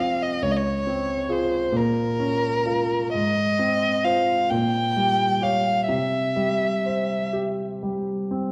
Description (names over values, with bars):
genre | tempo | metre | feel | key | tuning
classical, romantic duo for violin and grand piano | 41-47 BPM (dotted quarters) | 6/8 | rubato | unclear | A4 = 440 Hz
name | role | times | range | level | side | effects
warm violin | melody | 0.0-7.3 s | Bb4 to G5 | -26 LUFS | equal | none
clear baby grand piano | accompaniment | 0.0-8.5 s | Db2 to Db5 | -27 LUFS | equal | none
room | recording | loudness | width
wet recital hall reverb, RT60 1.8 s | dark, warm production | -23 LUFS | mono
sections
0.0-8.5 A section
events
none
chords
0.4 Dbmaj7; 1.7 Bbm; 3.1 Fm/Ab; 4.5 Gdim/Bb; 5.9 C